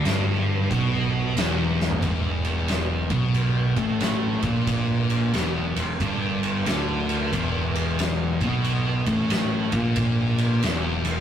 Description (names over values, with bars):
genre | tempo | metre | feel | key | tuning
stoner and doom metal | 91 BPM | 4/4 | swing 64% on 8ths | unclear | A4 = 440 Hz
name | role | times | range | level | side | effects
thick fuzz guitar | riff | 0.0-11.2 s | E2 to D3 | -27 LUFS | left 3 dB | distortion
thick fuzz guitar | riff | 0.0-11.2 s | E2 to D3 | -26 LUFS | right 2 dB | distortion
fuzz fingered electric bass | bass | 0.1-11.2 s | E1 to D2 | -29 LUFS | equal | overdrive, tube saturation
oversized low-tuned drum kit | drums | 0.1-11.2 s | crash cymbal, kick drum, ride cymbal, snare drum, toms | -27 LUFS | right 1 dB | none
room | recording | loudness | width
moderate stone room reverb, RT60 1.4 s | rough rehearsal-room recording, tube saturation | -21 LUFS | side -9 dB against mid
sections
0.0-2.0 A section; 2.0-11.2 B section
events
drum fill 1.7-2.0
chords
0.0 Em